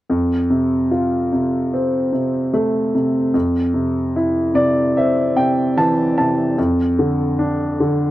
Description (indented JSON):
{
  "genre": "folk",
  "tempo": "74 BPM",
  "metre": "4/4",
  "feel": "straight",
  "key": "F major",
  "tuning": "A4 = 440 Hz",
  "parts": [
    { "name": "warm baby grand piano", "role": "accompaniment", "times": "0.1-8.1 s", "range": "F2 to A5", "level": "-16 LUFS", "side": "equal", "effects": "none" }
  ],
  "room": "light reverb",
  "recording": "dry, close 1970s-style studio recording",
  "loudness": "-16 LUFS",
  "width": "side -15 dB against mid",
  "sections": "0.1-8.1 A section",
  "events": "none",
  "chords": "0.1 F; 3.3 Fmaj13; 6.6 N.C."
}